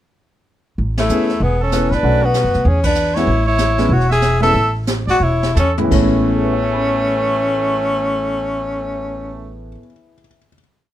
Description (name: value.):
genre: jazz, small-group swing and bop.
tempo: 164-194 BPM.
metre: 4/4.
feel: swing 62% on 8ths.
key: A major.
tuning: A4 = 439 Hz.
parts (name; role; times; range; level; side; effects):
upright bass; bass; 0.8-9.8 s; E1 to B2; -19 LUFS; equal; none.
jazz brush drum kit; drums; 0.8-6.0 s; brushed snare drum, china cymbal, hi-hat, kick drum, ride cymbal, snare drum, toms; -24 LUFS; right 1 dB; none.
clear tenor saxophone; melody; 1.0-9.6 s; A3 to A4; -18 LUFS; left 2 dB; none.
bright trumpet; second line; 1.0-9.6 s; A3 to E5; -24 LUFS; right 5 dB; none.
warm concert grand piano; accompaniment; 1.1-10.6 s; A2 to E6; -21 LUFS; left 1 dB; none.
room: light reverb.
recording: none.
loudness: -14 LUFS.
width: side -12 dB against mid.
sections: 0.8-5.9 A section; 5.9-8.8 final chord.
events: band accent 0.9, 2.8; slowing down 3.3-5.9; drum fill 5.2-5.9.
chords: 0.8 Amaj7; 2.0 Bm7; 2.7 E13; 3.3 Amaj7.